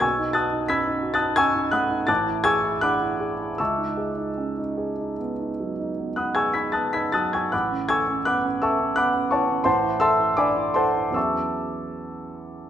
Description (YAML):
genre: classical, impressionist solo piano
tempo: 71-89 BPM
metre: 5/4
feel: rubato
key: unclear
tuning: A4 = 440 Hz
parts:
  - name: warm concert grand piano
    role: solo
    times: 0.0-12.7 s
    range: A1 to B6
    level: -21 LUFS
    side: equal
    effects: none
room: moderate recital hall reverb, RT60 1.3 s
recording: none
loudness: -21 LUFS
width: side -10 dB against mid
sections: 0.0-12.7 A section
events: none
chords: 0.0 B9; 2.1 Amaj7; 3.6 C#m11; 7.5 A69; 9.7 Am6; 11.2 E69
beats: | 0.03 0.71 1.39 2.10 2.84 | 3.60 4.38 5.19 5.97 6.74 | 7.52 8.26 8.97 9.66 10.38 | 11.16 11.99